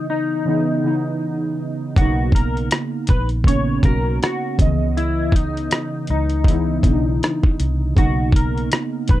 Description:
lo-fi hip hop; 80 BPM; 4/4; swing 56% on 16ths; A4 = 440 Hz
clean electric guitar; melody; 0.0-9.2 s; D#4 to C#5; -26 LUFS; left 3 dB; analog chorus
warbly lo-fi synth keys; accompaniment; 0.0-9.2 s; C#3 to D#5; -22 LUFS; right 1 dB; chorus, cassette tape
vintage muted fingered electric bass; bass; 2.0-9.2 s; A#1 to C#2; -21 LUFS; equal
dusty soul sampler-style drum kit; drums; 2.0-9.2 s; hi-hat, kick drum, rim click; -16 LUFS; equal
light reverb; dark, warm production; -17 LUFS; side -14 dB against mid
0.0-9.2 A section
0.0 C#m9; 2.0 Bmaj9; 4.6 C#m9; 8.0 Bmaj9

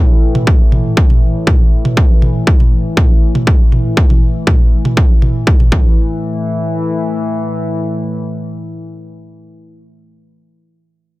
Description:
melodic techno; 120 BPM; 4/4; straight; A4 = 440 Hz
analog drone; drone; 0.0-9.4 s; A2 to E3; -20 LUFS; left 2 dB; chorus, sidechain pumping
electronic toms; drums; 0.3-5.7 s; -18 LUFS; right 2 dB; overdrive
electronic kick drum; drums; 0.5-5.8 s; -9 LUFS; equal; overdrive
little or no reverb; dense, heavily limited modern master; -10 LUFS; side -19 dB against mid
0.0-6.0 A section; 6.0-10.0 B section
0.0 A5

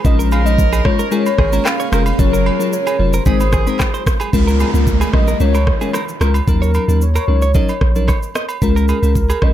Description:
afrobeats; 112 BPM; 4/4; straight; Db major; A4 = 440 Hz
dark horn section; second line; 0.0-4.0 s; Eb3 to Bb4; -27 LUFS; right 2 dB; plate reverb
bell-like FM electric piano; accompaniment; 0.0-9.5 s; Gb3 to C5; -20 LUFS; left 4 dB; chorus
granular cloud pad; sustained chords; 0.0-4.3 s; Bb3 to Ab4; -27 LUFS; right 1 dB; built-in reverb
punchy sub bass; bass; 0.0-9.5 s; F1 to Eb2; -15 LUFS; equal
afro-pop drum kit; drums; 0.0-9.5 s; handclaps, kick drum, rim click, shaker; -17 LUFS; equal
warm velvety synth lead; melody; 0.1-9.5 s; Bb4 to F5; -22 LUFS; equal; chorus, digital delay, plate reverb
direct-recorded clean electric guitar; riff; 0.2-9.4 s; Ab4 to Eb5; -27 LUFS; right 6 dB; digital delay
agogo bells and woodblock; percussion; 0.3-9.4 s; -28 LUFS; right 5 dB
downlifter; sound effects; 4.3-8.6 s; -25 LUFS; right 2 dB
little or no reverb; -13 LUFS; side -12 dB against mid
0.0-4.3 A section; 4.3-9.5 B section
0.0 Bbm7; 2.2 Gbmaj7; 3.3 Ab; 4.3 Db6; 6.5 Ebm7; 8.6 Db6

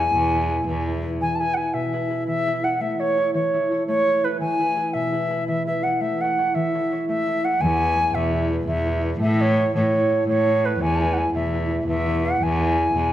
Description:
celtic folk, Celtic slip jig; 112 BPM (dotted quarters); 9/8; straight; E major; A4 = 440 Hz
baroque flute; melody; 0.0-13.1 s; B4 to A5; -22 LUFS; equal
concert harp; accompaniment; 0.0-13.1 s; B2 to C#5; -25 LUFS; equal
rich cello; bass; 0.0-1.2, 7.6-13.1 s; E2 to A2; -24 LUFS; equal
moderate recital hall reverb, RT60 1.6 s; dark, warm production; -19 LUFS; side -12 dB against mid
0.0-1.2 A section; 1.2-13.1 A section
0.0 E; 2.8 A; 4.4 E; 6.0 A; 7.6 E; 9.2 A; 10.8 E

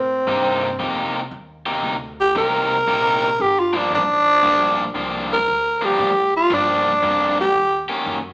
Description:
electric blues shuffle; 116 BPM; 4/4; swing 66% on 8ths; G minor; A4 = 440 Hz
growling tenor saxophone; melody; 0.0-7.9 s; C4 to Bb4; -16 LUFS; equal
upright bass; bass; 0.0-8.3 s; G1 to A2; -35 LUFS; equal
cranked stack guitar; riff; 0.3-8.2 s; G2 to G4; -23 LUFS; left 1 dB; overdrive
moderate large studio reverb, RT60 0.9 s; band playing live in one room, small speaker sound; -16 LUFS; side -26 dB against mid
0.0-8.3 A section
tenor saxophone solo 0.0-8.3
0.0 Cm7; 3.4 Gm7; 7.5 Eb7

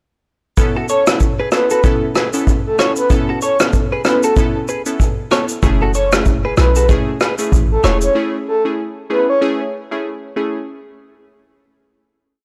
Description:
afrobeats; 95 BPM; 4/4; swing 58% on 16ths; F# minor; A4 = 440 Hz
glassy digital keys; accompaniment; 0.6-10.6 s; A3 to A4; -23 LUFS; equal; chorus
vintage brush drum kit; drums; 0.6-8.1 s; kick drum, rim click, shaker; -18 LUFS; equal
direct-recorded clean electric guitar; riff; 0.8-8.0 s; F#4 to C#5; -24 LUFS; equal; analog chorus, analog delay
breathy flute-like synth lead; melody; 0.9-9.4 s; A4 to C#5; -21 LUFS; equal; chorus, analog delay
short 808-style bass; bass; 5.6-8.1 s; E1 to B1; -19 LUFS; equal
little or no reverb; -16 LUFS; mono
0.6-10.7 verse
0.6 Aadd9; 5.6 F#m7

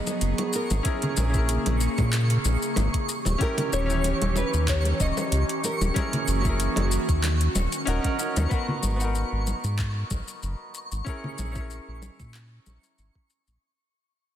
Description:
sunset chillout; 94 BPM; 4/4; swing 54% on 16ths; G# minor; A4 = 437 Hz
nylon-string guitar; melody; 0.0-6.9 s; A#4 to D#5; -32 LUFS; equal; tape echo
bright baby grand piano; accompaniment; 0.0-13.6 s; B3 to C#5; -32 LUFS; moving between left 4 dB and right 2 dB; auto-pan, tape echo
airy breathy pad; sustained chords; 0.0-8.5 s; C#3 to G#4; -31 LUFS; right 1 dB; chorus
twinkling granular texture; texture; 0.0-13.6 s; C#6; -36 LUFS; right 2 dB; built-in reverb
deep house drum kit; drums; 0.1-13.6 s; handclaps, hi-hat, shaker; -33 LUFS; left 2 dB; overdrive, small room ambience
congas; percussion; 0.1-12.8 s; -33 LUFS; left 1 dB
round analog bass; bass; 0.2-13.6 s; D#1 to A#2; -25 LUFS; equal
electronic kick drum; drums; 0.9-13.3 s; -27 LUFS; equal; small room ambience
light reverb; dense, heavily limited modern master; -23 LUFS; side -11 dB against mid
0.0-8.5 A section; 8.5-13.6 B section
fade-out 8.5-13.6
0.0 G#m7; 0.9 A#m7b5; 3.1 D#7b9; 6.0 F#7; 7.2 D#m7; 8.5 G#m7; 11.1 A#m7b5

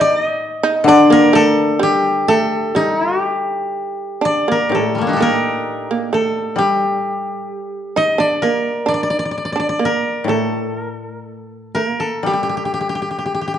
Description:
japanese traditional, Japanese chamber music; 59-68 BPM; 2/4; rubato; G hirajoshi; A4 = 445 Hz
koto; melody; 0.0-13.6 s; G3 to G5; -18 LUFS; left 2 dB
shamisen; second line; 0.0-13.6 s; G3 to Eb4; -20 LUFS; right 5 dB
koto; accompaniment; 0.0-13.6 s; A2 to G3; -18 LUFS; left 2 dB
wet recital hall reverb, RT60 1.3 s; dark, warm production, nothing above 11.0 kHz; -15 LUFS; side -10 dB against mid
0.0-4.7 A section; 4.7-13.6 B section

